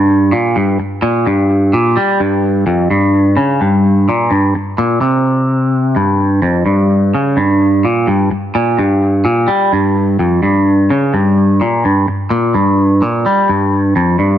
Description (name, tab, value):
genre	rock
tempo	128 BPM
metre	4/4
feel	straight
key	G minor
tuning	A4 = 441 Hz
part	twangy electric guitar	solo	0.0-14.4 s	F2 to G3	-10 LUFS	equal	phaser, tape echo
room	light reverb, digital ambience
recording	none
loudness	-10 LUFS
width	side -10 dB against mid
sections	0.0-6.0 A section; 6.0-14.4 B section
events	none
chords	none